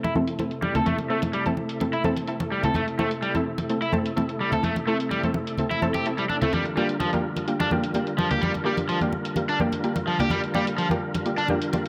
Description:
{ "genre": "breakbeat, breaks", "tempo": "127 BPM", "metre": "4/4", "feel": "straight", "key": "unclear", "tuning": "A4 = 441 Hz", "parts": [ { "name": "tonewheel organ", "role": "sustained chords", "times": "0.0-11.9 s", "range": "C3 to Bb4", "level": "-33 LUFS", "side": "equal", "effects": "chorus vibrato, fast rotary speaker, low-pass filter" }, { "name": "cranked stack guitar", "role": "riff", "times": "0.0-11.5 s", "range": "F3 to A4", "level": "-30 LUFS", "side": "equal", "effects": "overdrive, low-pass filter, tape echo" }, { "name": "electronic hi-hat", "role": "drums", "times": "0.0-11.9 s", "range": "none", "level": "-43 LUFS", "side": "equal", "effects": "overdrive, low-pass filter on hats, studio reverb, low-pass filter on room" }, { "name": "congas", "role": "percussion", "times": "0.0-11.8 s", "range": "none", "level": "-31 LUFS", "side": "equal", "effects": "none" }, { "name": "orchestra-hit-like synth stab", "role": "stabs", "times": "0.2-11.8 s", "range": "A3 to A4", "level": "-30 LUFS", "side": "equal", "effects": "built-in reverb, tape echo" } ], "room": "moderate plate reverb, RT60 1.3 s", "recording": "none", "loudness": "-25 LUFS", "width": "mono", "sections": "0.0-11.9 A section", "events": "filter sweep on tonewheel organ 0.0-11.9", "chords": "0.0 Am; 6.5 Gm7" }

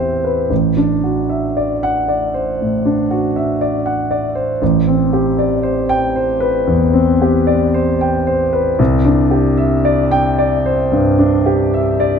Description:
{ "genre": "classical, impressionist solo piano", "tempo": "57 BPM", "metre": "4/4", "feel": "rubato", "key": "A dorian", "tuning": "A4 = 441 Hz", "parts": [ { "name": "warm concert grand piano", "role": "solo", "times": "0.0-12.2 s", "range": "A1 to G5", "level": "-13 LUFS", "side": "equal", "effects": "none" } ], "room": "moderate scoring stage reverb, RT60 1.7 s", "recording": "close, detailed microphones", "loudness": "-13 LUFS", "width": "side -6 dB against mid", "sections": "0.0-12.2 A section", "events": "none", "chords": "0.0 Am9; 0.5 D9/A; 4.6 Am11; 8.8 Cadd9" }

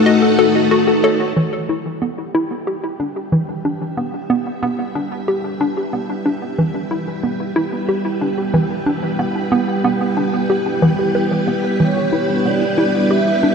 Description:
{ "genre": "ambient, sequencer-driven space music", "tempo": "92 BPM", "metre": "4/4", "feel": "straight", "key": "E minor", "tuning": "A4 = 440 Hz", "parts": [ { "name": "string machine, full ensemble", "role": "sustained chords", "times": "0.0-13.5 s", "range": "G3 to F#5", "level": "-20 LUFS", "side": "equal", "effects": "ensemble chorus" }, { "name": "warbly dusty pluck", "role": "arpeggios", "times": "0.1-1.4 s", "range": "F#4 to F#5", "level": "-20 LUFS", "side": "left 4 dB", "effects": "chorus, auto-pan, analog delay" }, { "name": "hollow square pluck", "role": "riff", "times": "0.1-13.5 s", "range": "E3 to D#5", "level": "-19 LUFS", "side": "equal", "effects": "chorus, analog delay" }, { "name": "wind-like tuned noise texture", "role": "texture", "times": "2.1-13.5 s", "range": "G4", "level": "-27 LUFS", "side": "right 3 dB", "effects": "built-in reverb" }, { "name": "expressive synth lead", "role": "melody", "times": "11.8-13.5 s", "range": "C#5 to E5", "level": "-21 LUFS", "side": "left 1 dB", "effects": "analog chorus, analog delay" } ], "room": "wet lush hall reverb, RT60 2.7 s", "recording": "dreamy mix soaked in reverb", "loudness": "-16 LUFS", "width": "side -6 dB against mid", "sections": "0.0-1.4 A section; 1.4-13.5 B section", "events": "fade-in on string machine 1.4-13.5", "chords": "0.0 B7; 1.4 Em" }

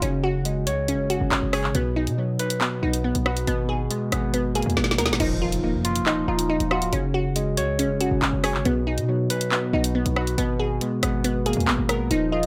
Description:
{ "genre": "hip hop, drill", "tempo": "139 BPM", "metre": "4/4", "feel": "half-time", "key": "unclear", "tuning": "A4 = 440 Hz", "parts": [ { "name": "overdriven tine electric piano", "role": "accompaniment", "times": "0.0-12.5 s", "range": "B2 to Db5", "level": "-28 LUFS", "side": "equal", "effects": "phaser" }, { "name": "glassy wavetable pluck", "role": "arpeggios", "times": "0.0-12.5 s", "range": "B3 to Bb4", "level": "-29 LUFS", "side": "equal", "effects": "chorus, tape echo" }, { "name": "hard-hitting 808-style bass", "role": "bass", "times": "0.0-12.5 s", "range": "Db1 to B2", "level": "-30 LUFS", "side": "equal", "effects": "none" }, { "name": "drill drum kit", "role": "drums", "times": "0.0-12.5 s", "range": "crash cymbal, handclaps, hi-hat, rim click, snare drum", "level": "-28 LUFS", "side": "equal", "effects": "none" }, { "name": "impact", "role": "sound effects", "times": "5.2-6.9 s", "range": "none", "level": "-36 LUFS", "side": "equal", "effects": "none" }, { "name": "soft octave-layered synth lead", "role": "second line", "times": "12.3-12.5 s", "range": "Eb5", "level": "-26 LUFS", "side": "equal", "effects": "chorus" } ], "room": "light reverb", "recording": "none", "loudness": "-23 LUFS", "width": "mono", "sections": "0.0-5.2 A section; 5.2-12.5 B section", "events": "drum fill 4.8-5.2; impact 5.2-6.9", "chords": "0.0 Gbsus2; 1.7 B; 3.5 Abmadd9; 5.2 Ebmadd9; 6.9 Gbsus2; 8.7 B; 10.4 Abmadd9" }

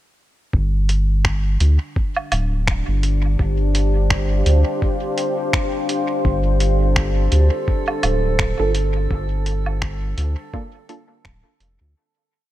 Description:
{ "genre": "ambient dub", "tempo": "84 BPM", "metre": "4/4", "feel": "swing 57% on 16ths", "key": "unclear", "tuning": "A4 = 441 Hz", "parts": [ { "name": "deep dark ambient pad", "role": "sustained chords", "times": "2.2-12.0 s", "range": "D4 to G5", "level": "-24 LUFS", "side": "left 1 dB", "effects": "chorus, built-in reverb" }, { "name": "round analog bass", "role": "bass", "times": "0.5-11.9 s", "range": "D1 to D2", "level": "-18 LUFS", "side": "equal", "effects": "none" }, { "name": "electronic kick drum", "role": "drums", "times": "0.5-11.4 s", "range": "none", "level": "-23 LUFS", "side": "equal", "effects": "none" }, { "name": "lo-fi sampler-style drum kit", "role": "drums", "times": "0.9-11.8 s", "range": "finger snaps, hi-hat, woodblock", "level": "-25 LUFS", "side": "right 1 dB", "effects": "dub echo" }, { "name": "drifting glass-harmonics texture", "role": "texture", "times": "6.8-12.0 s", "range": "A4", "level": "-30 LUFS", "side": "right 5 dB", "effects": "chorus, built-in reverb" }, { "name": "filtered dub chord stab", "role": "stabs", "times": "8.6-11.1 s", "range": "Bb3 to A4", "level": "-27 LUFS", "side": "right 4 dB", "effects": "phaser, wide subtle chorus, vintage 12-bit sampler grit, dub echo" } ], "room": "little or no reverb", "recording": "none", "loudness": "-17 LUFS", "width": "side -14 dB against mid", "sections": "0.5-12.0 groove", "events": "fade-out 8.2-12.0", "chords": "0.5 G7(no3)" }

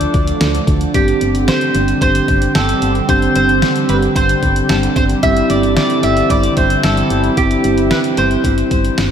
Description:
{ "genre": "synth-pop", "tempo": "112 BPM", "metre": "4/4", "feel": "straight", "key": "C major", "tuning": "A4 = 437 Hz", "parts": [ { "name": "mandolin", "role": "melody", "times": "0.0-9.1 s", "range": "G4 to E5", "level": "-17 LUFS", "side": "equal", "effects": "diffuse ambient delay" }, { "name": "tine electric piano", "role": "accompaniment", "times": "0.0-9.1 s", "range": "A3 to G4", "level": "-20 LUFS", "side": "right 2 dB", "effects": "medium stereo tremolo" }, { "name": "chorused pulse-width pad", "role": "sustained chords", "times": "0.0-9.1 s", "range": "D3 to G4", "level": "-18 LUFS", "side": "equal", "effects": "none" }, { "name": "solid FM bass", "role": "bass", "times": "0.0-9.1 s", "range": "G1 to D2", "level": "-19 LUFS", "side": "equal", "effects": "none" }, { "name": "detuned 8-bit digital drum machine", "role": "drums", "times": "0.0-9.1 s", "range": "hi-hat, kick drum, snare drum", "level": "-19 LUFS", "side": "equal", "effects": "overdrive" } ], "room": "wet cathedral reverb, RT60 5.2 s", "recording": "dreamy mix soaked in reverb", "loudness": "-12 LUFS", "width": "side -8 dB against mid", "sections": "0.0-9.1 A section", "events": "none", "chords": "0.0 Dm; 0.9 Gsus4; 5.2 Cadd9/G" }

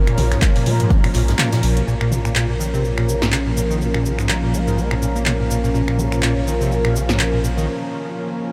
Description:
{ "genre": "acid house", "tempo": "124 BPM", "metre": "4/4", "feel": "swing 57% on 16ths", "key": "Bb minor", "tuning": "A4 = 440 Hz", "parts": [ { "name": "lush unison pad", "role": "sustained chords", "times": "0.0-8.5 s", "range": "F3 to Bb4", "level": "-26 LUFS", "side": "equal", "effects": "chorus, phaser, sidechain pumping" }, { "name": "acid bass, square", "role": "riff", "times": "0.1-7.7 s", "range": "Ab2 to Bb3", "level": "-24 LUFS", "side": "equal", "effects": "ensemble chorus, sidechain pumping, analog delay" }, { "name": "punchy analog drum machine", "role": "drums", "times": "0.1-7.7 s", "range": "cabasa, finger snaps, handclaps, hi-hat, snare drum, toms", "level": "-26 LUFS", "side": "equal", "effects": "none" }, { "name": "warm sub bass", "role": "bass", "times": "0.2-7.7 s", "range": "Bb1 to Bb2", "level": "-25 LUFS", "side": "equal", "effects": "sidechain pumping" }, { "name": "tight metal drum kit", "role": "drums", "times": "0.2-1.8 s", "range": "hi-hat, snare drum", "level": "-38 LUFS", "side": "equal", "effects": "none" }, { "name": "electronic kick drum", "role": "drums", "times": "0.4-1.0 s", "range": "none", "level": "-18 LUFS", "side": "equal", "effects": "none" }, { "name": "deep dark ambient pad", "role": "texture", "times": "2.6-7.7 s", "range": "Db4 to F5", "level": "-30 LUFS", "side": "equal", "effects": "chorus, built-in reverb, sidechain pumping" } ], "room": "wet huge ambient reverb, RT60 7.4 s", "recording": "dreamy mix soaked in reverb", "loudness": "-19 LUFS", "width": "mono", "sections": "0.0-1.9 A section; 1.9-8.5 B section", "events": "filter sweep on acid bass 0.0-1.9; kick drops out 1.4-1.9; break 7.7-8.5", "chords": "0.0 Bbm" }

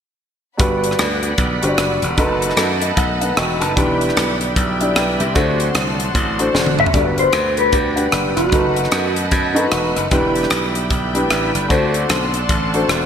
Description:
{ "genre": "uptempo gospel", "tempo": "151 BPM", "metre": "4/4", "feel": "swing 61% on 8ths", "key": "G major", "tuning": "A4 = 438 Hz", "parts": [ { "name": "warm upright piano", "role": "accompaniment", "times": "0.6-13.1 s", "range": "G2 to B5", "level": "-20 LUFS", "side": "left 1 dB", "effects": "none" }, { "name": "bright tonewheel organ", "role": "sustained chords", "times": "0.6-13.1 s", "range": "B2 to F#5", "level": "-25 LUFS", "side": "right 2 dB", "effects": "slow rotary speaker, overdrive, chorus vibrato" }, { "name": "dark studio string section", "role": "sustained chords", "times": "0.6-13.1 s", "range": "D5 to C6", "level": "-26 LUFS", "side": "right 1 dB", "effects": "none" }, { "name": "glassy slap bass", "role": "bass", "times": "0.6-13.1 s", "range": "E1 to F#2", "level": "-21 LUFS", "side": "equal", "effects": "none" }, { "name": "tight funk drum kit", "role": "drums", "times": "0.6-13.0 s", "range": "hi-hat, kick drum, rim click, snare drum, toms", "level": "-20 LUFS", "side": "equal", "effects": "gated reverb" }, { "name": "mellow electric guitar", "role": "melody", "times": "6.8-9.1 s", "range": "F#4 to E5", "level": "-18 LUFS", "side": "left 2 dB", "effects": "wide subtle chorus" } ], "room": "moderate lush hall reverb, RT60 1.6 s, small room ambience", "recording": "bright 1980s-style digital production", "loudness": "-15 LUFS", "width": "side -8 dB against mid", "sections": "0.6-6.9 A section; 6.9-13.1 B section", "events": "upright piano fill 2.6-3.8, 9.3-10.1; drum fill 6.5-6.9", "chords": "0.6 Gmaj7; 2.2 B7/F#; 3.8 Em7; 5.4 D7; 6.9 Gmaj7; 8.5 B7/F#; 10.1 Em7; 11.7 D7" }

